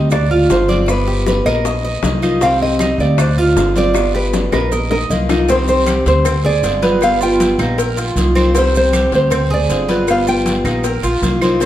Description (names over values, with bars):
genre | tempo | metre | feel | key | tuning
latin, Cuban son and guajira | 156 BPM | 4/4 | straight | C minor | A4 = 440 Hz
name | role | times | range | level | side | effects
nylon-string guitar | melody | 0.0-11.7 s | Bb4 to G5 | -18 LUFS | equal | tape echo
picked acoustic archtop guitar | accompaniment | 0.0-11.7 s | C3 to G4 | -20 LUFS | left 2 dB | none
Cuban tres | arpeggios | 0.0-11.7 s | B3 to Eb5 | -20 LUFS | right 2 dB | none
upright bass | bass | 0.0-11.7 s | G1 to D2 | -18 LUFS | equal | none
bongos and cowbell | percussion | 0.1-11.7 s | none | -24 LUFS | left 6 dB | none
claves | percussion | 0.1-11.6 s | none | -32 LUFS | right 6 dB | none
congas | percussion | 0.1-11.7 s | none | -24 LUFS | equal | none
guiro | percussion | 0.1-11.7 s | none | -31 LUFS | right 4 dB | none
maracas | percussion | 0.1-11.7 s | none | -32 LUFS | right 7 dB | none
room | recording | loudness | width
wet large studio reverb, RT60 1.3 s | none | -12 LUFS | side -12 dB against mid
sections
0.0-5.5 A section; 5.5-11.7 B section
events
drum fill 4.3-5.5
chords
0.1 Dm7b5; 0.9 G7; 1.7 Bbsus4; 2.4 Cm; 3.2 Dm7b5; 4.0 G7; 4.7 Bbsus4; 5.5 Cm; 6.3 Dm7b5; 7.0 G7; 7.8 Bbsus4; 8.6 Cm; 9.3 Dm7b5; 10.1 G7; 10.9 Bbsus4